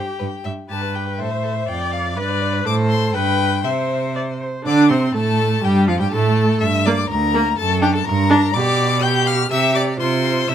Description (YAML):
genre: quick classical-period movement for string quartet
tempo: 123 BPM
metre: 2/4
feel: straight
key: C major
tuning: A4 = 440 Hz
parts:
  - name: rich violin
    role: melody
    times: 0.0-10.5 s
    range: D5 to G6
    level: -23 LUFS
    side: left 11 dB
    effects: none
  - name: clear viola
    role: accompaniment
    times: 0.0-10.5 s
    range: F3 to D5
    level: -21 LUFS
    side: right 1 dB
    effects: none
  - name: clear cello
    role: bass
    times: 0.0-10.5 s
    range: D2 to D3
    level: -20 LUFS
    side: right 3 dB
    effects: none
  - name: clear violin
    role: second line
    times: 0.2-10.5 s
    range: F4 to G5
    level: -25 LUFS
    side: left 2 dB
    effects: none
room: moderate studio reverb, RT60 0.6 s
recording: none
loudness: -16 LUFS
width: side -9 dB against mid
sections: 0.0-4.7 A section; 4.7-10.5 B section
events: none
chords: 0.2 N.C.; 0.7 Gadd9; 1.2 Am; 1.7 Dm/F; 2.2 G; 2.7 Am; 3.1 G; 3.6 C; 4.7 Amadd11; 5.6 Fsus2; 6.1 N.C.; 6.6 Gm; 7.6 D/F#; 8.1 Gm; 8.5 G/B; 9.5 C; 10.0 F5/C